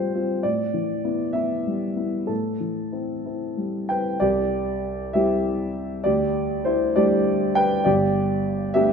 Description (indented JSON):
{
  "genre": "neoclassical minimalist piano",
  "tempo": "66 BPM (dotted quarters)",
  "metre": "6/8",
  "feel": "rubato",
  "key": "unclear",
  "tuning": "A4 = 440 Hz",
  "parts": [
    { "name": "dark grand piano", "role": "solo", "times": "0.0-8.9 s", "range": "G1 to G5", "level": "-21 LUFS", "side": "equal", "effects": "none" }
  ],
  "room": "moderate concert hall reverb, RT60 1.8 s",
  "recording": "minimal, uncompressed stereo recording",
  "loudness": "-21 LUFS",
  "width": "side -6 dB against mid",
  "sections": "0.0-4.2 A section; 4.2-8.9 B section",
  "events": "none",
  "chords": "0.4 Em/A; 2.3 Am7; 4.2 C; 6.0 Dsus4; 7.9 Gadd9",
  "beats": "| 0.42 1.35 | 2.29 3.26 | 4.22 5.14 | 6.05 6.95 | 7.86 8.75"
}